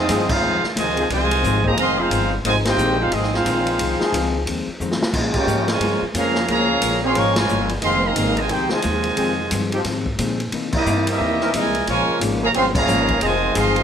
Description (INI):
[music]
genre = jazz, big band swing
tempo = 178 BPM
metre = 4/4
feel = swing 62% on 8ths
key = F minor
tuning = A4 = 440 Hz
[part]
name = clear trumpet section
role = melody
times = 0.0-13.8 s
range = Bb3 to Db6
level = -21 LUFS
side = right 1 dB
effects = none
[part]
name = clear trombone section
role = second line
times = 0.0-13.8 s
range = Bb2 to G4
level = -23 LUFS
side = right 2 dB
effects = none
[part]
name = upright bass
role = bass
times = 0.0-13.8 s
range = F1 to C3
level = -25 LUFS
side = equal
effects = none
[part]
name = vintage hollow-body jazz guitar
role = accompaniment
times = 0.1-13.8 s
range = F2 to D#4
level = -27 LUFS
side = left 5 dB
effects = none
[part]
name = dark trombone section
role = sustained chords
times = 0.1-13.8 s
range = E3 to Bb4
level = -27 LUFS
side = left 2 dB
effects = none
[part]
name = swinging big-band drum kit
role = drums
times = 0.1-13.8 s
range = crash cymbal, hi-hat, kick drum, ride cymbal, snare drum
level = -25 LUFS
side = equal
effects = none
[sound]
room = moderate large studio reverb, RT60 1.2 s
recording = none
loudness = -17 LUFS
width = side -8 dB against mid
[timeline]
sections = 0.0-13.8 A section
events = band accent 0.3, 2.6, 5.3, 7.3, 10.7, 12.7; drum fill 4.8-5.1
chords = 0.0 Fm7; 5.1 Bbm7; 7.8 Fm7; 10.5 C7#9; 11.9 Bbm7; 13.2 Fm7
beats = 0.09 0.42 0.76 | 1.10 1.43 1.77 2.11 | 2.44 2.78 3.12 3.45 | 3.79 4.12 4.46 4.80 | 5.13 5.47 5.81 6.14 | 6.48 6.82 7.15 7.49 | 7.83 8.16 8.50 8.84 | 9.17 9.51 9.85 10.18 | 10.52 10.86 11.19 11.53 | 11.87 12.20 12.54 12.88 | 13.21 13.55